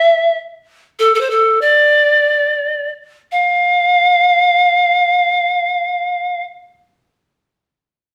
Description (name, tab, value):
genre	andean folk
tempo	free time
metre	none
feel	none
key	unclear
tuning	A4 = 443 Hz
part	bright reedy pan flute	solo	0.0-6.4 s	A4 to F5	-13 LUFS	equal	none
room	wet studio reverb, RT60 0.7 s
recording	band playing live in one room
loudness	-14 LUFS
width	mono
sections	0.0-3.3 A section; 3.3-6.3 B section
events	slowing down 0.7-3.3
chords	none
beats	free time